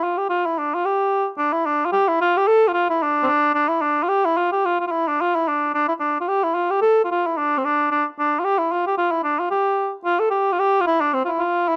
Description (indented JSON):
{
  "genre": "celtic folk",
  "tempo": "221 BPM",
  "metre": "4/4",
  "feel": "swing 56% on 8ths",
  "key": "unclear",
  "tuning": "A4 = 442 Hz",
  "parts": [
    { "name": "dark cor anglais", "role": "solo", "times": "0.0-11.8 s", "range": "C4 to A4", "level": "-20 LUFS", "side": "equal", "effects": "none" }
  ],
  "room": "studio ambience",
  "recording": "dry, close 1970s-style studio recording",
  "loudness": "-20 LUFS",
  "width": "mono",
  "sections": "0.0-1.4 A section; 1.4-10.1 A section; 10.1-11.8 B section",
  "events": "none",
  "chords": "none",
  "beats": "0.02 | 0.29 0.56 0.83 1.10 | 1.38 1.65 1.92 2.19 | 2.46 2.73 3.00 3.28 | 3.55 3.82 4.09 4.36 | 4.63 4.91 5.18 5.45 | 5.72 5.99 6.26 6.54 | 6.81 7.08 7.35 7.62 | 7.89 8.16 8.44 8.71 | 8.98 9.25 9.52 9.79 | 10.06 10.34 10.61 10.88 | 11.15 11.42 11.69"
}